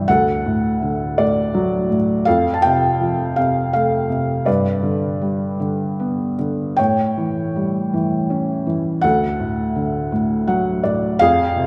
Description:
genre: classical, lyrical solo piano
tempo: 54 BPM (dotted quarters)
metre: 6/8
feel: rubato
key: unclear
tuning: A4 = 439 Hz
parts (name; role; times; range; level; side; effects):
- felt-muted upright piano; solo; 0.0-11.7 s; D2 to A5; -19 LUFS; equal; none
room: wet concert hall reverb, RT60 1.9 s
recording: recorded in a church or concert hall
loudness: -19 LUFS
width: mono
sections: 0.0-11.7 A section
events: felt piano fill 10.1-11.2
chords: 0.1 D; 2.3 F; 4.5 G; 6.8 A7; 9.0 D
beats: | 0.07 1.17 | 2.26 3.37 | 4.47 5.61 | 6.78 7.94 | 9.04 10.12 | 11.20

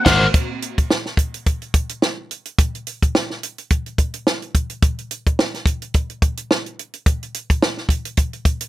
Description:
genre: funk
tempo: 107 BPM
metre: 4/4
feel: swing 56% on 16ths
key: none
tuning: none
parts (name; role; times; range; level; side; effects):
- compact cocktail drum kit; drums; 0.1-8.7 s; crash cymbal, hi-hat, kick drum, snare drum; -18 LUFS; equal; none
room: little or no reverb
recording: none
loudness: -18 LUFS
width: side -15 dB against mid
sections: 0.3-8.7 A section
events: band accent 0.0-0.3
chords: none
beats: | 0.34 0.90 1.46 2.02 | 2.58 3.14 3.70 4.26 | 4.82 5.38 5.94 6.50 | 7.06 7.62 8.18

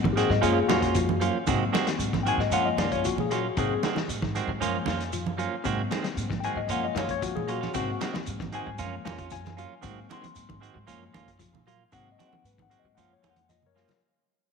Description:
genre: afrobeat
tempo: 115 BPM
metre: 4/4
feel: straight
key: unclear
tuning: A4 = 440 Hz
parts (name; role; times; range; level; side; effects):
- tine electric piano; accompaniment; 0.0-14.0 s; F3 to C6; -30 LUFS; left 9 dB; medium stereo tremolo
- clean electric guitar; arpeggios; 0.0-13.9 s; Bb2 to Gb3; -37 LUFS; left 6 dB; none
- upright bass; bass; 0.0-13.8 s; F2 to Bb2; -33 LUFS; right 1 dB; none
- vintage drum kit; drums; 0.0-14.0 s; hi-hat, kick drum, snare drum; -34 LUFS; left 5 dB; none
- congas; percussion; 0.1-14.0 s; none; -34 LUFS; right 10 dB; none
- clean electric guitar; stabs; 0.2-13.9 s; Eb3 to Gb4; -30 LUFS; right 8 dB; none
- shekere; percussion; 0.2-13.9 s; none; -40 LUFS; right 7 dB; none
room: wet echo chamber reverb, RT60 2.1 s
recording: 1960s-style stereo with parts hard left and right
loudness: -25 LUFS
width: side -5 dB against mid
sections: 0.0-14.0 A section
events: fade-out 0.0-14.0; tine electric piano solo 0.0-14.0; drum fill 13.4-14.0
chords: 0.4 Gbmaj7; 1.5 Ab7; 2.5 Gbmaj7; 3.6 Ab7; 4.6 Gbmaj7; 5.7 Ab7; 6.7 Gbmaj7; 7.7 Ab7; 8.8 Gbmaj7; 9.8 Ab7; 10.9 Gbmaj7; 11.9 Ab7; 13.0 Gbmaj7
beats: 0.43 0.95 | 1.48 2.00 2.52 3.04 | 3.56 4.09 4.61 5.13 | 5.65 6.18 6.70 7.22 | 7.74 8.27 8.79 9.31 | 9.83 10.36 10.88 11.40 | 11.93 12.45 12.97 13.49

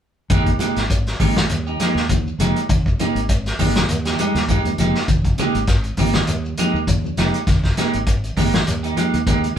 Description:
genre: afrobeat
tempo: 100 BPM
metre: 4/4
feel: swing 55% on 16ths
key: F minor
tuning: A4 = 444 Hz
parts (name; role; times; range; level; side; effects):
- mellow electric guitar; arpeggios; 0.3-9.5 s; C3 to G3; -24 LUFS; left 2 dB; none
- semi-hollow electric guitar; stabs; 0.3-9.6 s; Ab3 to G4; -22 LUFS; right 3 dB; harmonic tremolo
- fingered electric bass; bass; 0.3-9.6 s; F1 to Eb2; -23 LUFS; equal; none
- warm soul drum kit; drums; 0.3-9.6 s; hi-hat, kick drum, snare drum; -21 LUFS; equal; none
- congas; percussion; 0.3-9.4 s; none; -27 LUFS; left 1 dB; none
- shekere; percussion; 0.3-9.6 s; none; -29 LUFS; left 1 dB; none
room: wet studio ambience, RT60 0.5 s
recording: band playing live in one room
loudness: -16 LUFS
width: side -9 dB against mid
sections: 0.3-9.6 A section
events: none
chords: 0.3 Fm11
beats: | 0.30 0.90 1.49 2.09 | 2.69 3.29 3.88 4.48 | 5.08 5.67 6.27 6.87 | 7.47 8.07 8.67 9.26

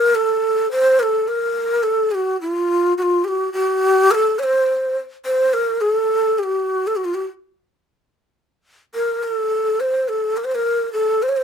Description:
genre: persian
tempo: 106 BPM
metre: 4/4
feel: straight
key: unclear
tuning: A4 = 440 Hz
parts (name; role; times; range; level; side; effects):
- breathy mellow ney; solo; 0.0-11.4 s; F4 to Db5; -16 LUFS; equal; none
room: light reverb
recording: minimal, uncompressed stereo recording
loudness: -17 LUFS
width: side -7 dB against mid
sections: 0.0-11.4 A section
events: none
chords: none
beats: 0.13 0.70 1.27 | 1.84 2.40 2.97 3.54 | 4.11 4.68 5.25 5.82 | 6.39 6.95 7.52 8.09 | 8.66 9.23 9.80 10.37 | 10.94

